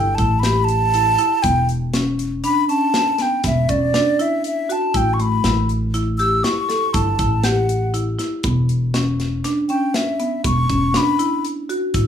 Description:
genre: progressive instrumental, band music in an uneven meter.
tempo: 120 BPM.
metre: 7/4.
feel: straight.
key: E dorian.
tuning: A4 = 440 Hz.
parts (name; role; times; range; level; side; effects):
breathy wooden flute; melody; 0.0-11.5 s; D5 to E6; -19 LUFS; equal; plate reverb.
marimba with medium hard mallets; arpeggios; 0.0-12.1 s; A3 to A4; -22 LUFS; equal; plate reverb.
upright bass; bass; 0.0-12.1 s; E1 to A1; -20 LUFS; equal; none.
tight metal drum kit; drums; 0.2-12.1 s; hi-hat, kick drum, snare drum; -26 LUFS; left 1 dB; none.
room: moderate small room reverb, RT60 0.5 s.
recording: rough home demo mix, small room ambience.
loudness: -16 LUFS.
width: side -8 dB against mid.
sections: 0.0-12.1 A section.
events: flute solo 0.0-12.1.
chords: 0.0 A5; 1.4 E5; 4.9 A7(no3); 8.4 E5.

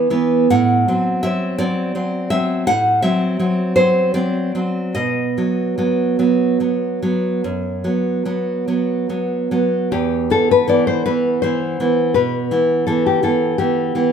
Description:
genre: romantic duo for nylon-string guitar and classical guitar.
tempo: 48-57 BPM (dotted quarters).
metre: 12/8.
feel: rubato.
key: E minor.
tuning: A4 = 437 Hz.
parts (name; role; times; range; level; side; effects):
nylon-string guitar; accompaniment; 0.0-14.1 s; E2 to F#5; -16 LUFS; right 2 dB; none.
nylon-string guitar; melody; 9.9-14.1 s; G4 to D5; -18 LUFS; left 6 dB; none.
room: moderate large studio reverb, RT60 1.3 s.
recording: band playing live in one room.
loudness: -15 LUFS.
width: side -7 dB against mid.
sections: 0.0-9.9 A section; 9.9-14.1 B section.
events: none.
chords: 0.0 E5; 0.5 F#m7b5/A; 5.0 B; 9.9 Em.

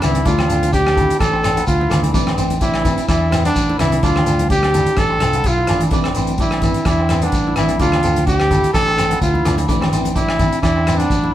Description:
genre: highlife guitar band.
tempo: 127 BPM.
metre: 4/4.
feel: swing 54% on 16ths.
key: A minor.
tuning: A4 = 437 Hz.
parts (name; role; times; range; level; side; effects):
clear trumpet; melody; 0.0-11.3 s; D4 to A4; -18 LUFS; equal; none.
electric guitar at the edge of break-up; accompaniment; 0.0-11.0 s; A3 to B4; -27 LUFS; left 3 dB; none.
kora; arpeggios; 0.0-11.3 s; B3 to E4; -23 LUFS; right 2 dB; none.
fingered electric bass; bass; 0.0-11.3 s; A1 to E2; -20 LUFS; equal; none.
warm soul drum kit; drums; 0.0-11.2 s; hi-hat, kick drum, rim click; -22 LUFS; equal; none.
agogo bells; percussion; 0.0-11.0 s; none; -28 LUFS; left 1 dB; none.
congas; percussion; 0.0-11.3 s; none; -26 LUFS; equal; none.
shekere; percussion; 0.0-11.2 s; none; -27 LUFS; equal; none.
room: moderate studio reverb, RT60 0.7 s.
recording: band playing live in one room.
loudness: -14 LUFS.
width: side -12 dB against mid.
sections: 0.0-11.3 A section.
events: drum fill 5.6-5.9.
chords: 0.3 Dm; 2.1 Amadd9; 4.0 Dm; 5.9 Amadd9; 7.8 Dm; 9.7 Amadd9.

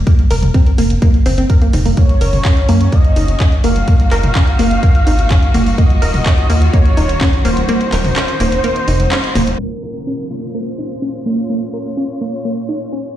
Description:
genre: progressive house.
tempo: 126 BPM.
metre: 4/4.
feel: straight.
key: Bb minor.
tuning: A4 = 439 Hz.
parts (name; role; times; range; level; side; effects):
tight sequencer bass; bass; 0.0-9.5 s; Eb1 to Gb2; -15 LUFS; equal; sidechain pumping.
wide unison pluck; arpeggios; 0.1-13.0 s; Bb3 to Bb4; -19 LUFS; right 1 dB; sidechain pumping, ping-pong delay.
electronic kick drum; drums; 0.1-7.3 s; none; -11 LUFS; equal; none.
pop drum kit; drums; 0.1-13.0 s; cabasa, handclaps, hi-hat; -24 LUFS; equal; sidechain pumping on hats, sidechain pumping on perc.
electronic congas and toms; percussion; 0.1-9.6 s; none; -23 LUFS; left 2 dB; overdrive, sidechain pumping on perc, sidechain pumping on toms.
wide unison lead; melody; 2.0-13.2 s; Bb4 to F5; -22 LUFS; equal; vintage 12-bit sampler grit, sidechain pumping, ping-pong delay.
rich symphonic string section; sustained chords; 2.0-13.2 s; Bb2 to Gb4; -25 LUFS; left 1 dB; sidechain pumping, low-pass filter.
downlifter; sound effects; 9.6-13.2 s; none; -32 LUFS; equal; none.
room: light reverb.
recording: played on a big sound system in a bare room, stone room reverb, low-pass filter.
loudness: -11 LUFS.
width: side -12 dB against mid.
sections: 0.0-9.6 A section; 9.6-13.2 B section.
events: filter sweep on synth pluck 0.0-9.6, 9.6-13.2; break 7.7-9.6; band accent 9.1; filter sweep on string section 9.6-13.2; filter sweep 9.6-13.2.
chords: 0.0 F5; 2.0 Gb; 5.8 Ebmadd9; 9.6 Bbm.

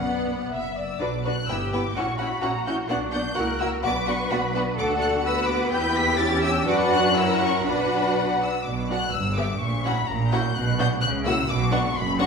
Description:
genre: quick classical-period movement for string orchestra.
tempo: 127 BPM.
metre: 2/4.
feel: rubato.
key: B minor.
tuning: A4 = 440 Hz.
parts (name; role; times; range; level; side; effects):
warm symphonic violin section; melody; 0.0-12.3 s; A#5 to B6; -29 LUFS; left 4 dB; none.
rich studio violin section; second line; 0.0-12.3 s; F#4 to G5; -27 LUFS; left 2 dB; none.
warm symphonic viola section; accompaniment; 0.0-12.3 s; A3 to G4; -28 LUFS; equal; none.
rich symphonic cello section; bass; 0.0-12.3 s; F#2 to B4; -29 LUFS; right 2 dB; none.
warm symphonic double bass section; bass; 0.0-12.3 s; F#1 to F#2; -28 LUFS; right 2 dB; none.
room: wet recital hall reverb, RT60 1.4 s.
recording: recorded in a church or concert hall.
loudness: -21 LUFS.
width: side -5 dB against mid.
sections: 0.0-1.0 A section; 1.0-8.7 B section; 8.7-12.3 B section.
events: none.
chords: 0.0 Bm; 1.5 Em/G; 2.0 F#7/A#; 2.9 Bm; 3.4 F#7/C#; 3.8 Bm; 4.8 D; 5.2 Bm/D; 5.7 Em; 6.2 C#dim/E; 6.7 Bm/F#; 7.2 F#7; 7.7 Bm; 9.1 Em/G; 9.6 F#7/A#; 10.6 Bm; 11.0 F#7/C#; 11.5 Bm.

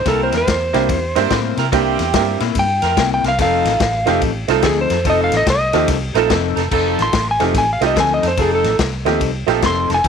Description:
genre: electric blues shuffle.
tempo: 144 BPM.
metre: 4/4.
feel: swing 64% on 8ths.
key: F mixolydian.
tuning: A4 = 440 Hz.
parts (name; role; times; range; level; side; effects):
electric slide guitar; melody; 0.0-10.1 s; Ab4 to C6; -18 LUFS; equal; none.
vintage muted fingered electric bass; bass; 0.0-10.1 s; F1 to C3; -22 LUFS; equal; none.
electric guitar through a small old amp; riff; 0.1-10.1 s; C3 to A4; -22 LUFS; left 14 dB; none.
warm horn section; stabs; 0.1-10.1 s; C4 to C5; -22 LUFS; right 11 dB; none.
vintage drum kit; drums; 0.1-10.1 s; crash cymbal, kick drum, ride cymbal, snare drum; -22 LUFS; left 4 dB; none.
clear upright piano; accompaniment; 0.7-9.6 s; A3 to A4; -19 LUFS; right 13 dB; none.
room: light reverb.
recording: 1960s-style stereo with parts hard left and right.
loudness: -14 LUFS.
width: side -6 dB against mid.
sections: 0.0-6.7 A section; 6.7-10.1 A section.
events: electric slide guitar solo 0.0-10.1.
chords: 0.1 C7; 3.4 F7.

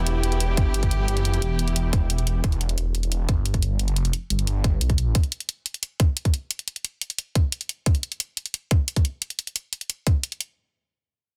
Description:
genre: dark technical drum and bass.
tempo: 177 BPM.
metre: 4/4.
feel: straight.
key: E minor.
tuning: A4 = 439 Hz.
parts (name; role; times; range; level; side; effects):
dark studio string section; sustained chords; 0.0-2.4 s; E3 to G4; -32 LUFS; equal; sidechain pumping.
phased detuned saw bass; bass; 0.0-5.1 s; E1 to B1; -25 LUFS; equal; phaser, overdrive, sidechain pumping.
electronic hi-hat; drums; 0.1-10.5 s; none; -30 LUFS; equal; none.
electronic kick drum; drums; 0.6-10.1 s; none; -23 LUFS; equal; none.
room: small room ambience.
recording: dense, heavily limited modern master.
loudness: -24 LUFS.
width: mono.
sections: 0.0-10.6 A section.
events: none.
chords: 0.0 Em.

